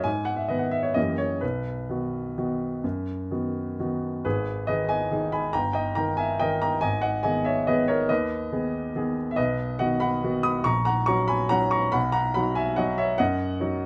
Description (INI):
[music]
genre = classical, piano waltz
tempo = 123-151 BPM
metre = 3/4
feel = rubato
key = B major, G# minor from 4.2 s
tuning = A4 = 443 Hz
[part]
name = warm grand piano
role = solo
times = 0.0-13.9 s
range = G1 to D#6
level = -26 LUFS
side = equal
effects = none
[sound]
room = light reverb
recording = none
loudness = -26 LUFS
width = mono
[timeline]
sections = 0.0-4.2 A section; 4.2-13.9 B section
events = none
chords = 0.1 G#m; 1.0 F#7b9; 1.4 B; 4.2 G#m; 5.5 D#/G; 6.8 G#m; 9.4 B; 10.7 F#/A#; 11.9 B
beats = | 0.06 0.49 0.96 | 1.42 1.89 2.37 | 2.83 3.30 3.79 | 4.25 4.67 5.11 | 5.54 5.97 6.41 | 6.83 7.24 7.67 | 8.10 8.52 8.95 | 9.37 9.80 10.23 | 10.66 11.08 11.51 | 11.93 12.35 12.78 | 13.19 13.61